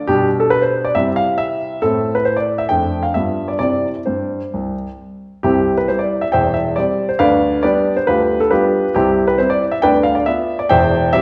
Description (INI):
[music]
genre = classical-period piano sonatina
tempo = 137 BPM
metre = 4/4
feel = rubato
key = C major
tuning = A4 = 439 Hz
[part]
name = warm grand piano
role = solo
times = 0.0-11.2 s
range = E1 to G5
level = -17 LUFS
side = equal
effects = none
[sound]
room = wet recital hall reverb, RT60 1.3 s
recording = recorded in a church or concert hall, nothing above 10.8 kHz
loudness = -17 LUFS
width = mono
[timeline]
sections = 0.0-5.4 A section; 5.4-11.2 B section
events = none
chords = 0.1 G/B; 1.0 C; 1.8 Am; 2.7 Dm7/F; 3.2 G7; 3.6 C; 6.3 C/E; 7.2 G7/D; 9.0 C; 9.8 Bdim/D; 10.7 C/E